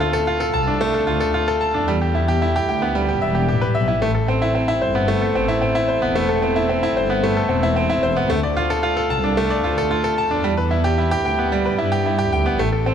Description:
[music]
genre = piano and strings electronica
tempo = 112 BPM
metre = 4/4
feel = straight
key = A minor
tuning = A4 = 440 Hz
[part]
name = bright baby grand piano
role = riff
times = 0.0-12.9 s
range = G3 to A5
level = -18 LUFS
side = equal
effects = digital delay
[part]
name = rich symphonic double bass section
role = bass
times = 0.5-12.8 s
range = E1 to A2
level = -22 LUFS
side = left 1 dB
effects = none
[sound]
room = moderate huge ambient reverb, RT60 5.0 s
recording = none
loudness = -17 LUFS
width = side -8 dB against mid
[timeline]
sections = 0.0-12.9 A section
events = none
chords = 0.0 Dm; 1.9 Em; 4.0 Amadd9; 8.3 Dm; 10.4 Em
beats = 0.27 0.81 1.34 | 1.88 2.41 2.95 3.48 | 4.02 4.56 5.09 5.63 | 6.16 6.70 7.24 7.77 | 8.31 8.84 9.38 9.91 | 10.45 10.98 11.52 12.06 | 12.59

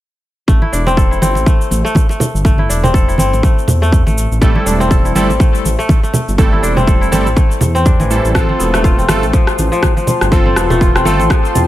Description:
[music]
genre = afro house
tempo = 122 BPM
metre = 4/4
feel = swing 58% on 16ths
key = A minor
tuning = A4 = 440 Hz
[part]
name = kora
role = arpeggios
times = 0.5-11.7 s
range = E3 to A4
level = -18 LUFS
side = left 2 dB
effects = sidechain pumping, ping-pong delay
[part]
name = dark detuned saw bass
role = bass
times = 0.5-11.7 s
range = E1 to E2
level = -16 LUFS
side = equal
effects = sidechain pumping
[part]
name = electronic kick drum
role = drums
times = 0.5-11.4 s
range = none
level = -12 LUFS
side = equal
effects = none
[part]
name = electronic shaker and rim click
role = drums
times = 0.5-11.7 s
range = none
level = -22 LUFS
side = equal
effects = none
[part]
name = congas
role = percussion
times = 0.5-11.7 s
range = none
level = -18 LUFS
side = right 1 dB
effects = none
[part]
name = warm analog keys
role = stabs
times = 4.4-11.2 s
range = G3 to A4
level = -19 LUFS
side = right 3 dB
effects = chorus, sidechain pumping, ping-pong delay
[part]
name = warm analog pad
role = sustained chords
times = 9.0-11.7 s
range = F4 to C6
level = -21 LUFS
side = left 2 dB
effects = chorus, sidechain pumping
[sound]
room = little or no reverb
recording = none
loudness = -10 LUFS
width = side -14 dB against mid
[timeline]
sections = 0.5-11.7 A section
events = none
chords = 0.5 Am7; 8.3 F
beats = | 0.48 0.97 1.47 1.96 | 2.45 2.94 3.43 3.92 | 4.42 4.91 5.40 5.89 | 6.38 6.88 7.37 7.86 | 8.35 8.84 9.33 9.83 | 10.32 10.81 11.30

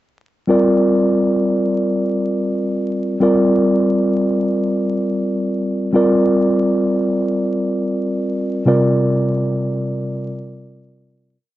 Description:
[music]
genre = hip hop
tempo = free time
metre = none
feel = none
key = unclear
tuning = A4 = 440 Hz
[part]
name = mellow tine electric piano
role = solo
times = 0.5-11.4 s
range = C3 to D5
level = -15 LUFS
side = equal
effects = medium stereo tremolo
[sound]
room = light reverb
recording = worn, warbling old tape, cassette tape, vinyl crackle, warbly pitch drift, nothing above 8.0 kHz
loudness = -15 LUFS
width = side -15 dB against mid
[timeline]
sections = 0.5-11.4 head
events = fade-out 8.7-11.4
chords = 0.5 C9sus4; 8.7 Fsus24/C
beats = free time

